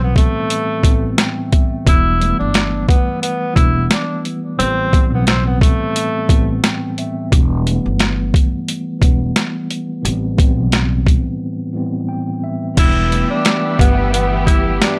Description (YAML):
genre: hip hop, boom-bap hip-hop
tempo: 88 BPM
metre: 4/4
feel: swing 57% on 16ths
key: E minor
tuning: A4 = 440 Hz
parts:
  - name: breathy tenor saxophone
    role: melody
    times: 0.0-6.6, 12.8-15.0 s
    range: A3 to E4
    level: -22 LUFS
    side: equal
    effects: high-pass filter, low-pass filter, analog delay
  - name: mellow tine electric piano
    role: accompaniment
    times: 0.0-15.0 s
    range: A2 to G5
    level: -23 LUFS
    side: equal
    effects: cassette tape, high-pass filter, low-pass filter
  - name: upright bass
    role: bass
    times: 0.0-14.8 s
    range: E1 to B1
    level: -22 LUFS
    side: equal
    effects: tube saturation
  - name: boom bap sampler-style drum kit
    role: drums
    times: 0.2-15.0 s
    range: crash cymbal, hi-hat, kick drum, snare drum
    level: -17 LUFS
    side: equal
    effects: none
  - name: lush unison pad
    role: sustained chords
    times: 13.1-15.0 s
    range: G4 to E6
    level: -31 LUFS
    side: equal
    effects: chorus, high-pass filter, low-pass filter
  - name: warm studio string section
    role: stabs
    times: 12.8-15.0 s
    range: E3 to G4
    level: -26 LUFS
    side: equal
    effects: high-pass filter, low-pass filter, analog delay
room: little or no reverb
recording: dry, gritty hardware recording, transformer saturation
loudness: -16 LUFS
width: mono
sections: 0.0-12.8 A section; 12.8-15.0 B section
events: break 11.4-12.8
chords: 0.0 Am7; 1.9 Em; 4.6 Am7; 7.3 Em; 10.0 Am7; 12.8 Em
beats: 0.50 1.18 | 1.87 2.55 3.23 3.91 | 4.59 5.28 5.96 6.64 | 7.32 8.00 8.68 9.37 | 10.05 10.73 11.41 12.09 | 12.78 13.46 14.14 14.82